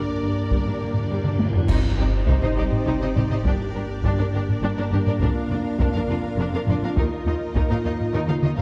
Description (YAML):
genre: cinematic, epic orchestral film score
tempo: 68 BPM (dotted quarters)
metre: 6/8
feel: straight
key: G minor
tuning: A4 = 440 Hz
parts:
  - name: warm symphonic violin section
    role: melody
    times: 0.0-8.6 s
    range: G4 to F5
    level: -40 LUFS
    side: equal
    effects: none
  - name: rich symphonic violin section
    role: second line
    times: 0.0-8.6 s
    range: D4 to C5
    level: -39 LUFS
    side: equal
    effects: none
  - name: dark French horn section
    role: sustained chords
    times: 0.0-8.6 s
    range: Bb3 to F4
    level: -33 LUFS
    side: equal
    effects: none
  - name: rich symphonic string section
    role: sustained chords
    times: 0.0-8.6 s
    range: D4 to F5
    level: -34 LUFS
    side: equal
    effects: none
  - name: timpani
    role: percussion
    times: 0.0-4.3 s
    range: G2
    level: -31 LUFS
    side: equal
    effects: none
  - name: clear symphonic viola section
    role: accompaniment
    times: 0.2-8.6 s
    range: G3 to Eb4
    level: -35 LUFS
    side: equal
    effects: none
  - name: rich symphonic cello section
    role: bass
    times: 0.2-8.6 s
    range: Eb2 to C3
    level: -31 LUFS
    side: equal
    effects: none
  - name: warm symphonic double bass section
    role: bass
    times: 0.2-8.5 s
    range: F1 to Eb2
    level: -32 LUFS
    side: equal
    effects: none
  - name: taiko ensemble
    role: drums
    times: 0.5-8.6 s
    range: none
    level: -27 LUFS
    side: equal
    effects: none
  - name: clash cymbals and concert bass drum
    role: percussion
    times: 1.7-2.8 s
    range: none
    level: -32 LUFS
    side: equal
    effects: none
room: moderate scoring stage reverb, RT60 1.7 s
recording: dark, warm production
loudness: -23 LUFS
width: mono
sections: 0.0-1.7 A section; 1.7-8.6 A section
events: timpani fill 0.0-1.7; drum fill 1.2-1.7, 8.3-8.6; band accent 1.7-2.3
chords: 0.0 Gm; 1.7 Cmadd9; 3.4 Gm; 5.2 Bb/F; 7.0 Ebsus2